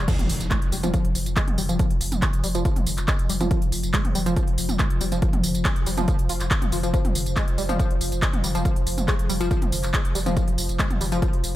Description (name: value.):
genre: driving peak-time techno.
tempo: 140 BPM.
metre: 4/4.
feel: straight.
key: F minor.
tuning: A4 = 440 Hz.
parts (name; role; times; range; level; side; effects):
tight sequenced synth; riff; 0.0-11.3 s; F3 to F4; -29 LUFS; equal; chorus, phaser, sidechain pumping, tape echo.
saturated sub bass; bass; 0.0-11.5 s; F1; -28 LUFS; equal; tube saturation, sidechain pumping, low-pass filter.
deep dark ambient pad; drone; 0.0-11.6 s; F3; -32 LUFS; left 1 dB; chorus, built-in reverb, sidechain pumping.
electronic kick drum; drums; 0.1-11.3 s; none; -23 LUFS; equal; none.
techno drum kit; drums; 0.1-11.5 s; crash cymbal, handclaps, hi-hat, tambourine, toms; -28 LUFS; equal; none.
impact; sound effects; 0.1-1.8 s; none; -33 LUFS; equal; none.
room: light reverb, digital ambience.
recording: none.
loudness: -20 LUFS.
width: side -14 dB against mid.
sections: 0.1-11.6 A section.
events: drop 0.1-11.6; impact 0.1-1.8.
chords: 0.1 Fm.